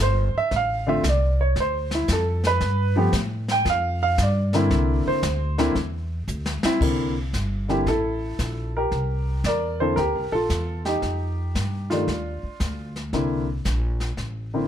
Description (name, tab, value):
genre	jazz piano trio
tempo	114 BPM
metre	4/4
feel	swing 67% on 8ths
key	C mixolydian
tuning	A4 = 440 Hz
part	warm grand piano	melody	0.0-14.7 s	D3 to G5	-23 LUFS	equal	none
part	upright bass	bass	0.0-14.7 s	G1 to A2	-25 LUFS	equal	none
part	jazz brush drum kit	drums	0.5-14.7 s	brushed snare drum, crash cymbal, hi-hat, kick drum, snare drum	-30 LUFS	left 2 dB	none
room	light reverb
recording	dark, warm production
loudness	-21 LUFS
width	side -10 dB against mid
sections	0.0-6.8 A section; 6.8-14.7 B section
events	grand piano solo 0.0-6.8; drum fill 6.3-6.8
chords	0.0 Dm7; 2.6 G9; 4.7 C9; 11.0 F7sus2; 13.1 C9